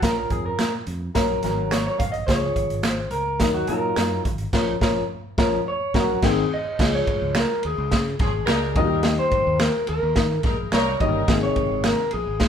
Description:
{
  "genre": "uptempo 1960s-style soul",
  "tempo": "107 BPM",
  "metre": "4/4",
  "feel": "straight",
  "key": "Db major",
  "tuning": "A4 = 442 Hz",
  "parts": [
    { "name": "electric guitar through a small old amp", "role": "melody", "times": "0.0-12.5 s", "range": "Gb4 to F5", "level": "-25 LUFS", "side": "equal", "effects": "none" },
    { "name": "warm upright piano", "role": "accompaniment", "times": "0.0-12.0 s", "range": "C3 to Bb4", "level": "-25 LUFS", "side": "left 3 dB", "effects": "none" },
    { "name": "fingered electric bass", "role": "bass", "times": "0.0-12.5 s", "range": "G1 to Eb3", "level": "-29 LUFS", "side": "equal", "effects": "none" },
    { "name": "raw garage drum kit", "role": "drums", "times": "0.0-12.5 s", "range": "crash cymbal, hi-hat, kick drum, ride cymbal, snare drum", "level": "-23 LUFS", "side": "equal", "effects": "none" },
    { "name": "finger snap", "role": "percussion", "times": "0.6-12.0 s", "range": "none", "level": "-32 LUFS", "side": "right 3 dB", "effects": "none" },
    { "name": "clear horn section", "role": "second line", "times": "8.2-11.3 s", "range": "F3 to Bb4", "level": "-27 LUFS", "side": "left 1 dB", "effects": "none" }
  ],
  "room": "moderate studio reverb, RT60 1.0 s",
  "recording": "band playing live in one room",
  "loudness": "-20 LUFS",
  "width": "side -8 dB against mid",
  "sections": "0.0-6.8 A section; 6.8-12.5 B section",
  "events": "clean electric guitar solo 0.0-6.8; band accent 4.5-6.8",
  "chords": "0.0 Bbm; 1.2 Gb; 2.3 Db; 3.4 Ebm; 4.5 Bbm; 5.7 Gb; 6.2 Ab; 6.8 Db; 8.8 Eb; 11.3 Ab"
}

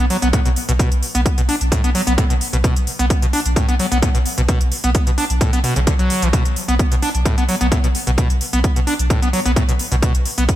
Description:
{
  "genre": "driving peak-time techno",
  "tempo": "130 BPM",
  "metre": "4/4",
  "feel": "straight",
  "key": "B minor",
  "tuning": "A4 = 440 Hz",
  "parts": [
    { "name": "screaming distorted acid line", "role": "riff", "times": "0.0-10.4 s", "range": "A2 to D4", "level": "-20 LUFS", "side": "equal", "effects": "distortion, lush chorus, sidechain pumping, ping-pong delay" },
    { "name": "warm sub bass", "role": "bass", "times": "0.0-10.5 s", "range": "B1", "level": "-21 LUFS", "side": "equal", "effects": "tube saturation, sidechain pumping, low-pass filter" },
    { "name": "electronic hi-hat", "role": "drums", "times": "0.1-10.6 s", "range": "none", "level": "-25 LUFS", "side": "equal", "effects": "overdrive, small room ambience" },
    { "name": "electronic kick drum", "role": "drums", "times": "0.3-10.6 s", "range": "none", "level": "-17 LUFS", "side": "equal", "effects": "overdrive, small room ambience" }
  ],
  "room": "light reverb, digital ambience",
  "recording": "bright 1980s-style digital production",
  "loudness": "-15 LUFS",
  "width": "side -13 dB against mid",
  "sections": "0.0-10.6 A section",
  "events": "none",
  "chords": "none"
}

